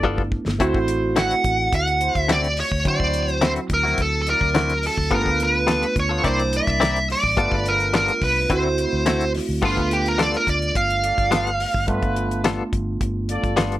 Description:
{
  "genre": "straight-eighth soul blues",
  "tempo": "106 BPM",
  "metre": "4/4",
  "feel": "straight",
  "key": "unclear",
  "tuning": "A4 = 440 Hz",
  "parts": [
    { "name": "overdriven tine electric piano", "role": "accompaniment", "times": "0.0-13.8 s", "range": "F#3 to F#4", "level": "-27 LUFS", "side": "right 3 dB", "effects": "phaser" },
    { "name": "clear horn section", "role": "sustained chords", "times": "0.0-13.7 s", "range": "E4 to D5", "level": "-30 LUFS", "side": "equal", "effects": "none" },
    { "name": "direct-recorded clean electric guitar", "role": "stabs", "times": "0.0-13.8 s", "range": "D3 to D5", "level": "-24 LUFS", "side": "left 4 dB", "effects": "tremolo" },
    { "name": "vintage muted fingered electric bass", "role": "bass", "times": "0.0-13.8 s", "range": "G1 to D3", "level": "-26 LUFS", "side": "equal", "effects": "none" },
    { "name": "damped 70s drum kit", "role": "drums", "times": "0.0-13.8 s", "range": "crash cymbal, hi-hat, kick drum, snare drum", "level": "-26 LUFS", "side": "equal", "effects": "none" },
    { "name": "smooth overdriven lead guitar", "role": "melody", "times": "1.2-11.9 s", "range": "F4 to F#5", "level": "-21 LUFS", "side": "right 1 dB", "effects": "none" }
  ],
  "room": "light reverb",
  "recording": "none",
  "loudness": "-18 LUFS",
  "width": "side -14 dB against mid",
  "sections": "0.0-9.6 A section; 9.6-13.8 B section",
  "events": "drum fill 0.0-0.6; lead electric guitar solo 9.6-13.8",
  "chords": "0.0 G9; 0.6 D9; 5.1 G9; 6.2 C9; 7.4 G9; 8.5 D9; 9.6 G9",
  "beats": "0.04 | 0.60 1.17 1.73 2.29 | 2.86 3.42 3.99 4.55 | 5.11 5.68 6.24 6.81 | 7.37 7.93 8.50 9.06 | 9.63 10.19 10.76 11.32 | 11.88 12.45 13.01 13.58"
}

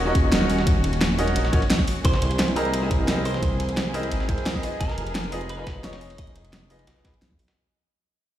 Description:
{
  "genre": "liquid drum and bass",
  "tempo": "174 BPM",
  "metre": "4/4",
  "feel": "straight",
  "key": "unclear",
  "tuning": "A4 = 440 Hz",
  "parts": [
    { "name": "clear baby grand piano", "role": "accompaniment", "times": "0.0-7.1 s", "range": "Cb4 to Eb5", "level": "-28 LUFS", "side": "equal", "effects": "ping-pong delay" },
    { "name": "muted studio string section", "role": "sustained chords", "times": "0.0-7.5 s", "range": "Eb3 to G#4", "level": "-33 LUFS", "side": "equal", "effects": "sidechain pumping" },
    { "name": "dark detuned saw bass", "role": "bass", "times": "0.0-7.5 s", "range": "Eb1 to F2", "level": "-26 LUFS", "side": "equal", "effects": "none" },
    { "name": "electronic kick drum", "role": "drums", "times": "0.1-7.4 s", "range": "none", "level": "-23 LUFS", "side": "equal", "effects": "none" },
    { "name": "pop drum kit", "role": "drums", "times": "0.1-7.5 s", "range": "hi-hat, snare drum", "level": "-27 LUFS", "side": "equal", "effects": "none" },
    { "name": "dusty soul sampler-style drum kit", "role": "drums", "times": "0.2-7.6 s", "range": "hi-hat, ride cymbal, snare drum", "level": "-34 LUFS", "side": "right 1 dB", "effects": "high-pass filter on cymbals, high-pass filter on snare, high-pass filter on hats, high-pass filter on room" },
    { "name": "clean electric guitar", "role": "melody", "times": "2.1-7.2 s", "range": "G#4 to Eb5", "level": "-32 LUFS", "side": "right 3 dB", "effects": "ping-pong delay" }
  ],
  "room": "light reverb",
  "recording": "played on a big sound system in a bare room, stone room reverb",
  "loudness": "-20 LUFS",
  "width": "side -12 dB against mid",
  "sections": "0.0-7.6 A section",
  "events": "drop 0.0-7.6; fade-out 2.0-7.6",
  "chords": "0.0 Ebm7; 2.0 C7alt; 4.6 Fm7b5",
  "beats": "0.32 | 0.67 1.01 1.36 1.70 | 2.05 2.39 2.74 3.08 | 3.43 3.77 4.12 4.46 | 4.81 5.15 5.50 5.84 | 6.18 6.53 6.88 7.22"
}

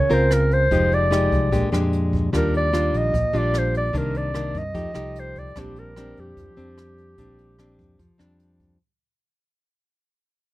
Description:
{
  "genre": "bossa nova",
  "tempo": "148 BPM",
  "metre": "4/4",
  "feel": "straight",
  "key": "Bb major",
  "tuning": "A4 = 440 Hz",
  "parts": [
    { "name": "mellow clarinet", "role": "melody", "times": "0.0-8.4 s", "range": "G4 to Eb5", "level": "-24 LUFS", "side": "equal", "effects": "none" },
    { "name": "nylon-string guitar", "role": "accompaniment", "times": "0.0-8.8 s", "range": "Bb2 to Bb4", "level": "-25 LUFS", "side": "left 1 dB", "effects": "none" },
    { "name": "fingered electric bass", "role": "bass", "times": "0.1-8.8 s", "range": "F1 to G2", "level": "-24 LUFS", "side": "equal", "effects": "none" },
    { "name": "jazz brush drum kit", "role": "drums", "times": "0.1-8.7 s", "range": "hi-hat, kick drum, rim click", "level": "-30 LUFS", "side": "equal", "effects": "none" }
  ],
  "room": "light reverb",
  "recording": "dark, warm production",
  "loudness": "-19 LUFS",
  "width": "side -17 dB against mid",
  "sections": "0.0-8.8 A section",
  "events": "fade-out 0.0-8.8",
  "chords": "0.0 Gbmaj7#11 (rootless); 0.7 Fm9; 1.5 Bb6; 2.3 Ebmaj9; 3.9 Cm9; 4.8 F9; 5.6 Bb69",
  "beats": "0.30 | 0.71 1.11 1.52 1.92 | 2.33 2.73 3.14 3.54 | 3.95 4.35 4.76 5.16 | 5.57 5.97 6.38 6.78 | 7.18 7.59 8.00 8.40"
}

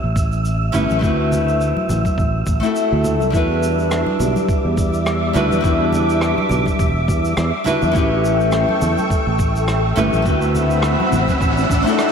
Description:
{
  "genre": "sunset chillout",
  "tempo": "104 BPM",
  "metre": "4/4",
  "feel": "swing 56% on 16ths",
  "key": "E minor",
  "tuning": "A4 = 439 Hz",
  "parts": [
    { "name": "nylon-string guitar", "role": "accompaniment", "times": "0.0-12.1 s", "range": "G3 to B4", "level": "-20 LUFS", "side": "moving between left 4 dB and right 3 dB", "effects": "auto-pan, analog delay" },
    { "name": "sustaining fretless electric bass", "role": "bass", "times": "0.0-11.8 s", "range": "E1 to E2", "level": "-20 LUFS", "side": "equal", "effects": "ensemble chorus" },
    { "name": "wind-like tuned noise texture", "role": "texture", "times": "0.0-12.1 s", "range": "E5", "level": "-27 LUFS", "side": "right 3 dB", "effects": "built-in reverb" },
    { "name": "electronic kick drum", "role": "drums", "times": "0.2-11.8 s", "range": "none", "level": "-20 LUFS", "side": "equal", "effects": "none" },
    { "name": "shaker and rim click", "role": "drums", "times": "0.2-12.1 s", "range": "none", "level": "-30 LUFS", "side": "equal", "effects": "none" },
    { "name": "congas", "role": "percussion", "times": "0.7-11.4 s", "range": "none", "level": "-29 LUFS", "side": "left 1 dB", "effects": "none" },
    { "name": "soft string machine", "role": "sustained chords", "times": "3.8-12.1 s", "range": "G3 to E6", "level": "-22 LUFS", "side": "equal", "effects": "phaser, ensemble chorus" },
    { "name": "riser", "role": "sound effects", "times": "10.5-12.1 s", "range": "none", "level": "-26 LUFS", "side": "equal", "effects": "none" }
  ],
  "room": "wet lush hall reverb, RT60 2.8 s",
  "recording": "dreamy mix soaked in reverb",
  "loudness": "-15 LUFS",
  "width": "side -6 dB against mid",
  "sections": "0.0-12.1 A section",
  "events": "riser 10.5-12.1",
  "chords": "0.0 A7; 1.0 D13; 3.3 Em7; 7.9 A7; 10.3 D13",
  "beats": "0.45 | 1.02 1.60 2.18 2.76 | 3.33 3.91 4.49 5.06 | 5.64 6.22 6.79 7.37 | 7.95 8.53 9.10 9.68 | 10.26 10.83 11.41 11.99"
}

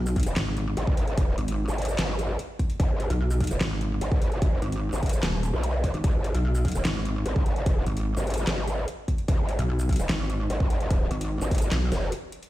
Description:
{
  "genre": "heavy wobble dubstep",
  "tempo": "148 BPM",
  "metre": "4/4",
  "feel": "half-time",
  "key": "G# minor",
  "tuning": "A4 = 441 Hz",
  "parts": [
    { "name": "pulsing pluck wobble bass", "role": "bass", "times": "0.0-11.9 s", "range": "D#1 to B1", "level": "-26 LUFS", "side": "equal", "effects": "chorus, overdrive" },
    { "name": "dubstep drum kit", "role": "drums", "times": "0.1-12.5 s", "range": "handclaps, hi-hat, shaker, snare drum", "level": "-32 LUFS", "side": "equal", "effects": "overdrive" },
    { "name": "electronic kick drum", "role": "drums", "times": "0.2-11.6 s", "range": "none", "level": "-25 LUFS", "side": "equal", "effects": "overdrive" },
    { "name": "growl bass", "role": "bass", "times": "0.3-12.1 s", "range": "D#1 to B1", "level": "-27 LUFS", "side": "equal", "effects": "chorus, overdrive" }
  ],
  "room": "little or no reverb",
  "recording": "played on a big sound system in a bare room, stone room reverb",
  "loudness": "-24 LUFS",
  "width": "side -16 dB against mid",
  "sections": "0.0-12.5 A section",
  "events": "break 12.1-12.5",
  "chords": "0.0 G#5",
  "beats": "0.36 0.77 | 1.18 1.58 1.99 2.39 | 2.80 3.20 3.61 4.01 | 4.42 4.82 5.23 5.63 | 6.04 6.45 6.85 7.26 | 7.66 8.07 8.47 8.88 | 9.28 9.69 10.09 10.50 | 10.90 11.31 11.72 12.12"
}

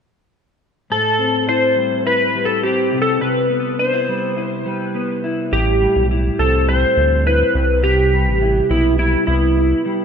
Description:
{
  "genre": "indie pop, bedroom pop",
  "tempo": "104 BPM",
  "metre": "4/4",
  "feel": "straight",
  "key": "unclear",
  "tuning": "A4 = 439 Hz",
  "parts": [
    { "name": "clean lap steel guitar", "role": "melody", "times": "0.9-9.8 s", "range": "E4 to C5", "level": "-17 LUFS", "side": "equal", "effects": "analog chorus, ping-pong delay" },
    { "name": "mellow electric guitar", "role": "accompaniment", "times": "0.9-10.0 s", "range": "A2 to E4", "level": "-22 LUFS", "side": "left 3 dB", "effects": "lush chorus, warbly pitch drift" },
    { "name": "round analog bass", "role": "bass", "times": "5.5-9.7 s", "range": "A1 to D2", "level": "-18 LUFS", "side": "right 1 dB", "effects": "none" }
  ],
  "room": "moderate plate reverb, RT60 2.7 s",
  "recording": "dreamy mix soaked in reverb",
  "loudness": "-14 LUFS",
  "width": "side -6 dB against mid",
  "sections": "0.9-5.5 A section; 5.5-10.0 B section",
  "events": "none",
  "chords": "0.9 Am7; 2.9 Cmaj7; 5.5 Am7; 7.5 Cmaj7",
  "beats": "| 0.90 1.48 2.05 2.63 | 3.21 3.79 4.37 4.94 | 5.52 6.10 6.68 7.25 | 7.83 8.41 8.99 9.57"
}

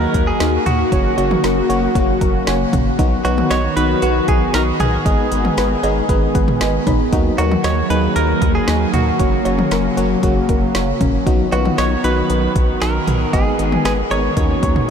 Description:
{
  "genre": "synth-pop",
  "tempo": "116 BPM",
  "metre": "4/4",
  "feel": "straight",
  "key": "Eb minor",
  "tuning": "A4 = 440 Hz",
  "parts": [
    { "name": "direct-recorded clean electric guitar", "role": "melody", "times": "0.0-14.8 s", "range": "Gb4 to Db5", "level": "-22 LUFS", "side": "right 2 dB", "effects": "diffuse ambient delay" },
    { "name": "FM electric piano", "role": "accompaniment", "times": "0.0-14.9 s", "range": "Gb3 to Cb6", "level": "-22 LUFS", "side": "left 3 dB", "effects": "chorus" },
    { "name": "lush unison pad", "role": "sustained chords", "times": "0.0-14.9 s", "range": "Db3 to Ab4", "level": "-21 LUFS", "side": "equal", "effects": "chorus, phaser" },
    { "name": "soft round pluck", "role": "arpeggios", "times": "0.0-14.9 s", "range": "Db4 to D#5", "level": "-25 LUFS", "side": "equal", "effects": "chorus, diffuse ambient delay" },
    { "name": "rubbery square bass", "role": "bass", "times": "0.0-14.8 s", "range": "Gb1 to Eb2", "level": "-21 LUFS", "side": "equal", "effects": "none" },
    { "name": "deep house drum kit", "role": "drums", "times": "0.1-14.9 s", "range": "cowbell, hi-hat, kick drum, snare drum, toms", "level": "-20 LUFS", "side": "equal", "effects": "none" }
  ],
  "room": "moderate huge ambient reverb, RT60 7.8 s",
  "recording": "dreamy mix soaked in reverb",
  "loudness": "-14 LUFS",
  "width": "side -7 dB against mid",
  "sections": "0.0-14.9 A section",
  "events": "FM electric piano fill 2.2-3.0, 6.1-7.1",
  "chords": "0.0 Ebm; 0.9 Gb; 3.0 B; 5.1 Abm; 7.1 Ebm; 9.2 Gb; 11.3 B; 13.3 Abm; 14.4 Ebm7",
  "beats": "0.40 | 0.92 1.44 1.96 2.47 | 2.99 3.51 4.02 4.54 | 5.06 5.58 6.09 6.61 | 7.13 7.64 8.16 8.68 | 9.20 9.71 10.23 10.75 | 11.27 11.78 12.30 12.82 | 13.33 13.85 14.37 14.89"
}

